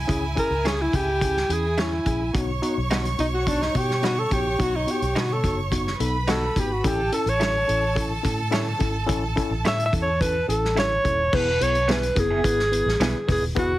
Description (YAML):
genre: uptempo 1960s-style soul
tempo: 107 BPM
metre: 4/4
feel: straight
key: E major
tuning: A4 = 440 Hz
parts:
  - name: clear studio violin section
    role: second line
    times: 0.0-11.3 s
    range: E4 to C#6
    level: -31 LUFS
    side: right 3 dB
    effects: none
  - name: vintage muted fingered electric bass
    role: bass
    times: 0.0-13.8 s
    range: D#1 to B2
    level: -27 LUFS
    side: equal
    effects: none
  - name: mellow tine electric piano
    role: accompaniment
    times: 0.1-13.7 s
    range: B3 to B4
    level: -30 LUFS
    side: left 3 dB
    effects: medium stereo tremolo
  - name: vintage drum kit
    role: drums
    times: 0.1-13.7 s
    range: crash cymbal, hi-hat, kick drum, snare drum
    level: -27 LUFS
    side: equal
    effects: none
  - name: mellow alto saxophone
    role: melody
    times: 0.4-13.8 s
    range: D4 to E5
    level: -24 LUFS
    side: equal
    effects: none
  - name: electric guitar through a small old amp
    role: stabs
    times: 0.7-13.1 s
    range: B3 to C#5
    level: -29 LUFS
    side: right 4 dB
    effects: tremolo
room: light reverb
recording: heavily compressed radio sound, multiband compression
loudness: -20 LUFS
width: side -15 dB against mid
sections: 0.0-11.3 A section; 11.3-13.8 B section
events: alto saxophone solo 0.0-11.3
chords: 0.0 C#m; 2.3 B; 6.8 A; 11.3 E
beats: | 0.09 0.66 1.22 1.78 | 2.35 2.91 3.47 4.03 | 4.60 5.16 5.72 6.28 | 6.84 7.41 7.97 8.53 | 9.09 9.65 10.21 10.77 | 11.33 11.89 12.45 13.01 | 13.57